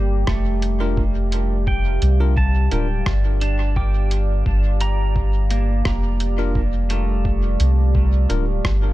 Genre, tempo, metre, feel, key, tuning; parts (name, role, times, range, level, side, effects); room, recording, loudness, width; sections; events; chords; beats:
ambient dub; 86 BPM; 4/4; straight; A4 = 440 Hz
deep dark ambient pad; sustained chords; 0.0-8.9 s; G3 to F5; -28 LUFS; right 1 dB; chorus, built-in reverb, vintage 12-bit sampler grit
pedal steel guitar; arpeggios; 0.0-8.9 s; A3 to D6; -29 LUFS; right 4 dB; dub echo
soft dub sub bass; bass; 0.0-8.9 s; D1 to C2; -18 LUFS; equal
electronic kick drum; drums; 0.3-8.8 s; -23 LUFS; equal; overdrive, small room ambience
lo-fi sampler-style drum kit; drums; 0.3-8.8 s; hi-hat, rim click; -30 LUFS; equal; overdrive, small room ambience, dub echo
bell-like tine electric piano; stabs; 0.8-8.4 s; D4 to Bb4; -31 LUFS; left 4 dB; medium stereo tremolo, dub echo
little or no reverb; echo-heavy mix; -17 LUFS; side -16 dB against mid
0.0-8.9 A section
0.0 Bb
0.28 0.97 | 1.67 2.37 3.07 3.76 | 4.46 5.16 5.86 6.55 | 7.25 7.95 8.65